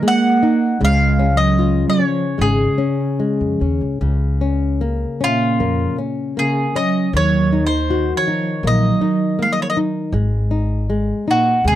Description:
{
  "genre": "fado-style ballad",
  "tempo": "72-81 BPM",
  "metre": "4/4",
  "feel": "rubato",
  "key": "Db major",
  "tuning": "A4 = 440 Hz",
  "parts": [
    { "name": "dark cello", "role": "second line", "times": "0.0-11.8 s", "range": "Bb2 to Bb3", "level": "-20 LUFS", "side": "right 5 dB", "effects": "none" },
    { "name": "flamenco guitar", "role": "accompaniment", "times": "0.0-11.8 s", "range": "Db3 to Gb4", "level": "-21 LUFS", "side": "left 4 dB", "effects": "none" },
    { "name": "mandolin", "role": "melody", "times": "0.1-11.8 s", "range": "F4 to Gb5", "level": "-20 LUFS", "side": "equal", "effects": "none" },
    { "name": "upright bass", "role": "bass", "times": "0.8-11.8 s", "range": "Ab1 to F2", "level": "-18 LUFS", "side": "equal", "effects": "none" }
  ],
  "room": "little or no reverb",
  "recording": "dry, close 1970s-style studio recording",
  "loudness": "-15 LUFS",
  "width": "side -12 dB against mid",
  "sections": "0.0-11.8 A section",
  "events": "none",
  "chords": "0.0 Absus2; 0.8 Db; 4.0 Bbm/Db; 7.1 Ebm; 10.1 Ab5",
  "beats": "0.04 | 0.82 1.60 2.39 3.21 | 4.02 4.82 5.60 6.37 | 7.14 7.90 8.65 9.39 | 10.14 10.89 11.64"
}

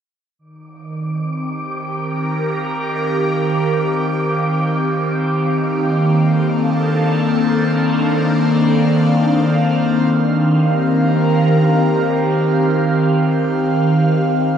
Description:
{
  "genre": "ambient",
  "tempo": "free time",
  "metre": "none",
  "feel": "none",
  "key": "unclear",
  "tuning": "A4 = 440 Hz",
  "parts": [
    { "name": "airy breathy pad", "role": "sustained chords", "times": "0.9-14.6 s", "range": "Eb3 to F5", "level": "-14 LUFS", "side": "equal", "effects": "chorus, phaser" },
    { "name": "wind-like tuned noise texture", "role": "texture", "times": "0.9-10.1 s", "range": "D6", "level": "-27 LUFS", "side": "equal", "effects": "built-in reverb" }
  ],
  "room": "wet concert hall reverb, RT60 2.2 s",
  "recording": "dark, warm production",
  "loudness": "-14 LUFS",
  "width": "side -8 dB against mid",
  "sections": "0.4-10.1 A section; 10.1-14.6 B section",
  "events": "fade-out on synth texture 0.4-10.1",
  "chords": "0.4 F9sus4/Eb; 5.3 Bbmaj9/Eb; 10.1 F9sus4/Eb",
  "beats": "free time"
}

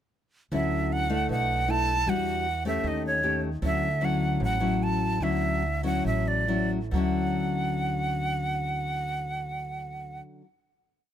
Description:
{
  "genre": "bossa nova",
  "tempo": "132-155 BPM",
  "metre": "4/4",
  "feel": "straight",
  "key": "D major",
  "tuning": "A4 = 438 Hz",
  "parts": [
    { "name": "breathy jazz flute", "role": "melody", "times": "0.5-10.2 s", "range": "Db5 to A5", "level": "-29 LUFS", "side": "right 2 dB", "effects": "none" },
    { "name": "nylon-string guitar", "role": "accompaniment", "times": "0.5-10.5 s", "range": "A2 to G4", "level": "-29 LUFS", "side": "left 3 dB", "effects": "none" },
    { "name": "upright bass", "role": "bass", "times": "0.5-10.2 s", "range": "A1 to E2", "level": "-30 LUFS", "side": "equal", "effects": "none" }
  ],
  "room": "little or no reverb",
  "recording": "close, detailed microphones",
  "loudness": "-25 LUFS",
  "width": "side -10 dB against mid",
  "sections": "0.5-6.9 A section; 6.9-10.6 final chord",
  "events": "slowing down 3.6-6.9",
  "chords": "0.5 Dmaj9; 1.3 Bm7; 2.1 Em9; 2.8 Eb7#11; 3.6 Dmaj9",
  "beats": "| 0.51 0.90 1.29 1.68 | 2.07 2.46 2.84 3.23 | 3.62 4.01 4.40 4.80 | 5.21 5.62 6.04 6.48 | 6.92 7.38 7.84 8.29 | 8.75 9.20 9.66 10.11"
}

